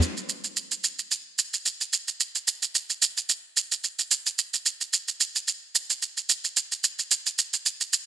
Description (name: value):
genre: amapiano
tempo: 110 BPM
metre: 4/4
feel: swing 55% on 16ths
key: none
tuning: none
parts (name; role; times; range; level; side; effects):
- shaker; drums; 0.0-8.1 s; none; -23 LUFS; right 4 dB; none
room: light reverb, digital ambience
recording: none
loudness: -24 LUFS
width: side -10 dB against mid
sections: 0.0-8.1 A section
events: kick muted 6.6-8.1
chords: none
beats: | 0.02 0.57 1.11 1.66 | 2.20 2.75 3.29 3.84 | 4.38 4.93 5.47 6.02 | 6.57 7.11 7.66